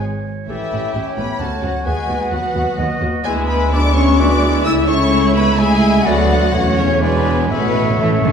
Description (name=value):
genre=quick classical-period movement for symphony orchestra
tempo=128 BPM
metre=3/4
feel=rubato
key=A major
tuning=A4 = 437 Hz
part: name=mellow hollow concert flute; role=second line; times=0.0-8.3 s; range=A4 to E6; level=-25 LUFS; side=left 4 dB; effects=none
part: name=warm clarinet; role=second line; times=0.0-8.3 s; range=A4 to E5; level=-24 LUFS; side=equal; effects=none
part: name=rich studio violin section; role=melody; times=0.5-8.3 s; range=A4 to E6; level=-25 LUFS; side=left 2 dB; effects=none
part: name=warm cor anglais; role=second line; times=0.5-8.3 s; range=E4 to D5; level=-27 LUFS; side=right 1 dB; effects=none
part: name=warm symphonic violin section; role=second line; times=0.5-8.3 s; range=A3 to E5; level=-26 LUFS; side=left 3 dB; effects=none
part: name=rich chamber viola section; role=accompaniment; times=0.5-8.3 s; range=G#3 to G4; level=-23 LUFS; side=right 2 dB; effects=none
part: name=warm bassoon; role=accompaniment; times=0.5-8.3 s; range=G#3 to C#4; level=-26 LUFS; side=equal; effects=none
part: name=mellow French horn section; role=sustained chords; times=0.5-8.3 s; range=A2 to E4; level=-21 LUFS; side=left 2 dB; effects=none
part: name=clear studio cello section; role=bass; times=0.5-8.3 s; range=C#2 to E3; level=-22 LUFS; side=right 4 dB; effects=none
part: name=rich studio double bass section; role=bass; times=0.5-8.3 s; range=E1 to D#2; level=-21 LUFS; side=right 1 dB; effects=none
part: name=timpani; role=percussion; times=7.5-8.3 s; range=A2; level=-22 LUFS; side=equal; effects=none
room=wet recital hall reverb, RT60 1.4 s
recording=heard from further back in the room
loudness=-13 LUFS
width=side -7 dB against mid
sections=0.0-8.3 A section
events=timpani fill 7.5-8.3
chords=0.0 N.C.; 0.5 A7; 1.4 Dmaj7; 1.9 B/D#; 3.3 E7/D; 4.7 A/C#; 6.1 Bm7/D; 6.5 A/E; 7.0 E7; 7.5 A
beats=0.02 | 0.49 0.95 1.40 | 1.86 2.32 2.79 | 3.25 3.72 4.18 | 4.65 5.12 5.59 | 6.06 6.54 7.02 | 7.51 8.01